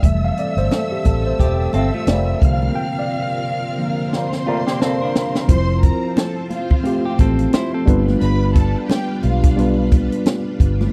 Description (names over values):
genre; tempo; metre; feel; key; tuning
lush 1970s-style soul; 88 BPM; 4/4; swing 58% on 16ths; F major; A4 = 440 Hz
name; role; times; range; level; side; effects
warm studio string section; second line; 0.0-9.9 s; F4 to F6; -31 LUFS; equal; none
tine electric piano; accompaniment; 0.0-10.9 s; D3 to G5; -24 LUFS; equal; overdrive
string machine, full ensemble; sustained chords; 0.0-10.9 s; C3 to E5; -31 LUFS; equal; ensemble chorus
vintage muted fingered electric bass; bass; 0.0-10.9 s; E1 to C2; -21 LUFS; equal; none
compact cocktail drum kit; drums; 0.0-10.9 s; hi-hat, kick drum, snare drum; -18 LUFS; equal; none
congas; percussion; 0.7-10.9 s; none; -31 LUFS; equal; none
clean electric guitar; riff; 1.4-8.1 s; A3 to C5; -27 LUFS; equal; none
muted trombone section; stabs; 1.4-5.5 s; Bb2 to C4; -28 LUFS; equal; none
room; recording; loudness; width
small room ambience; dry, close 1970s-style studio recording; -18 LUFS; mono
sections
0.0-5.5 A section; 5.5-10.9 B section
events
tine electric piano solo 0.0-5.5; break 2.8-5.5; drum fill 4.1-5.5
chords
0.0 Fmaj7; 2.4 C7sus4; 5.5 Fmaj7; 7.9 G7